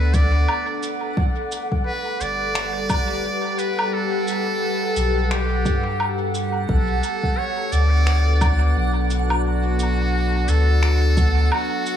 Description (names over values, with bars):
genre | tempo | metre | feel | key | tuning
ambient dub | 87 BPM | 4/4 | swing 59% on 16ths | B minor | A4 = 437 Hz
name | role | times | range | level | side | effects
trumpet with metal mute | melody | 0.0-12.0 s | F#4 to D5 | -26 LUFS | equal | dub echo
deep dark ambient pad | sustained chords | 0.0-12.0 s | G3 to F#5 | -26 LUFS | left 1 dB | chorus, built-in reverb
soft dub sub bass | bass | 0.0-11.5 s | G1 to G2 | -19 LUFS | equal | none
backwards swelling texture | texture | 0.0-12.0 s | F#5 | -31 LUFS | right 6 dB | built-in reverb
electronic kick drum | drums | 0.1-11.3 s | none | -22 LUFS | equal | none
electronic shaker, woodblock and finger snaps | drums | 0.1-12.0 s | none | -29 LUFS | equal | dub echo
room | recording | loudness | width
light reverb, digital ambience | small room ambience | -18 LUFS | side -9 dB against mid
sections
0.0-12.0 A section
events
none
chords
0.0 Bm7; 1.2 Gmaj7; 6.7 Bm7